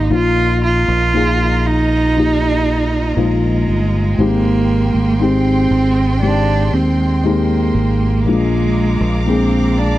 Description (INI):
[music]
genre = pop ballad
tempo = 59 BPM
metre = 4/4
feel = straight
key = unclear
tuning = A4 = 440 Hz
[part]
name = warm cello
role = melody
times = 0.0-10.0 s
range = Ab3 to F4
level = -17 LUFS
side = right 3 dB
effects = none
[part]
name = felt-muted upright piano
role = accompaniment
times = 0.0-10.0 s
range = Eb3 to D5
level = -19 LUFS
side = left 5 dB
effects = none
[part]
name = clear studio string section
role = sustained chords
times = 0.0-10.0 s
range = Ab3 to D6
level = -26 LUFS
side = right 2 dB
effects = none
[part]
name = fingered electric bass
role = bass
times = 0.0-10.0 s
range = G1 to Eb2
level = -17 LUFS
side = equal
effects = none
[sound]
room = light reverb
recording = dry, close 1970s-style studio recording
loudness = -13 LUFS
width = side -15 dB against mid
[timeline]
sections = 0.0-10.0 A section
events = none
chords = 0.1 Bbsus4; 4.2 Abmaj7; 8.3 Bb7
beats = | 0.12 1.14 2.15 3.17 | 4.18 5.20 6.22 7.24 | 8.25 9.27